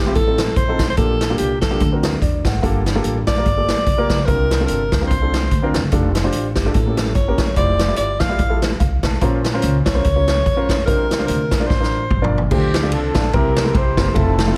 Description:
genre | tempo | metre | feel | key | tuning
uptempo gospel | 146 BPM | 4/4 | swing 56% on 8ths | unclear | A4 = 443 Hz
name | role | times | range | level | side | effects
breathy alto saxophone | melody | 0.0-12.3 s | G4 to F5 | -24 LUFS | equal | none
upright bass | bass | 0.0-14.5 s | F1 to F2 | -24 LUFS | equal | none
warm grand piano | accompaniment | 0.1-14.6 s | G2 to A5 | -25 LUFS | equal | none
swinging big-band drum kit | drums | 0.1-14.5 s | crash cymbal, hi-hat, kick drum, ride cymbal, snare drum, toms | -22 LUFS | equal | none
mellow horn section | melody | 12.5-14.6 s | C4 to C5 | -24 LUFS | equal | none
room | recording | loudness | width
light reverb, studio ambience | none | -18 LUFS | mono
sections
0.0-12.5 A section; 12.5-14.6 B section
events
drum fill 11.7-12.5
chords
0.2 F7/A; 1.0 Bb6; 1.8 D7b13; 2.6 Gm9; 4.3 C9sus4; 5.9 F69; 6.8 A7b9; 7.6 Dm11/F; 9.2 Bbmadd9; 10.9 C9sus4; 12.5 Dm7; 13.3 C7

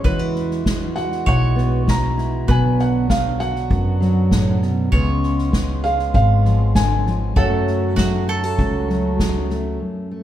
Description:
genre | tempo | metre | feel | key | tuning
acoustic folk duo or small band | 98 BPM | 4/4 | straight | F# minor | A4 = 440 Hz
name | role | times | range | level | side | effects
mandolin | second line | 0.0-9.5 s | F#4 to C#5 | -28 LUFS | right 4 dB | none
fingerpicked steel-string acoustic guitar | accompaniment | 0.0-10.2 s | F#2 to A4 | -23 LUFS | equal | none
hand-pumped harmonium | sustained chords | 0.0-9.8 s | D3 to F#4 | -30 LUFS | equal | none
upright bass | bass | 0.0-9.8 s | G#1 to F#2 | -20 LUFS | equal | none
soft-mallet drum kit | drums | 0.0-9.6 s | kick drum, snare drum | -22 LUFS | equal | none
felt-muted upright piano | melody | 1.0-9.5 s | E#5 to A#5 | -24 LUFS | right 1 dB | plate reverb
room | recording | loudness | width
wet studio reverb, RT60 0.8 s | heard from further back in the room | -16 LUFS | side -12 dB against mid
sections
0.0-9.8 A section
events
none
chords
0.0 Eadd9; 2.5 Bm; 4.9 C#7; 7.4 F#m

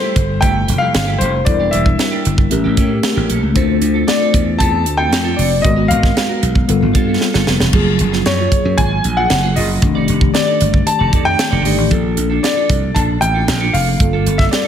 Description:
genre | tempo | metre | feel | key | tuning
polished 1980s jazz-funk pop | 115 BPM | 4/4 | straight | F major | A4 = 441 Hz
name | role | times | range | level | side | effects
clear baby grand piano | melody | 0.0-14.7 s | C5 to A5 | -19 LUFS | left 2 dB | slapback echo
mellow tine electric piano | accompaniment | 0.0-14.7 s | Eb3 to C5 | -19 LUFS | left 2 dB | medium stereo tremolo, analog chorus, slapback echo
clean electric guitar | riff | 0.0-14.7 s | A3 to Eb5 | -24 LUFS | right 6 dB | lush chorus, slapback echo
slap bass | bass | 0.2-14.5 s | E1 to A2 | -18 LUFS | right 1 dB | none
tight funk drum kit | drums | 0.2-14.6 s | crash cymbal, hi-hat, kick drum, snare drum | -17 LUFS | right 1 dB | none
room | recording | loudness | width
moderate recital hall reverb, RT60 1.5 s, small room reverb | big arena sound | -12 LUFS | side -9 dB against mid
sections
0.0-14.7 A section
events
drum fill 7.2-7.7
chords
0.0 Fmaj9; 1.5 Em7b5; 2.5 A7b9; 3.6 Dm7; 5.6 Abm9; 6.7 G9; 7.7 Gbmaj9; 9.8 F13; 11.9 Bbmaj7; 14.0 Gm9

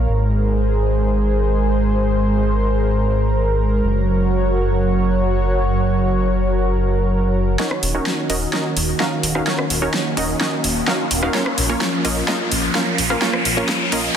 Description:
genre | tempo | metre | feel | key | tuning
EDM, festival progressive house | 128 BPM | 4/4 | straight | unclear | A4 = 440 Hz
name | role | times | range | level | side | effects
lush unison pad | sustained chords | 0.0-14.2 s | Eb3 to Db5 | -21 LUFS | right 1 dB | chorus
wide detuned saw bass | bass | 0.0-14.1 s | Eb1 to Bb1 | -20 LUFS | equal | chorus
supersaw stab | riff | 7.6-14.1 s | Bb3 to F5 | -22 LUFS | right 1 dB | low-pass filter, ping-pong delay
big-room dance drum kit | drums | 7.6-14.0 s | hi-hat, rim click, snare drum | -22 LUFS | equal | overdrive, high-pass filter on cymbals, small room ambience, high-pass filter on snare, high-pass filter on hats
riser | sound effects | 9.3-14.2 s | none | -26 LUFS | equal | none
room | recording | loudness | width
light reverb, digital ambience | dense, heavily limited modern master, high-pass filter | -16 LUFS | side -9 dB against mid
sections
0.0-7.6 A section; 7.6-14.2 B section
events
build-up 7.6-14.2; drum fill 7.6-14.2; filter sweep on supersaw synth 7.6-14.2; filter sweep on analog synth pad 7.6-14.2; riser 9.3-14.2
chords
0.1 Abadd9; 3.8 Gb; 7.6 Ebm7; 11.3 Bbm

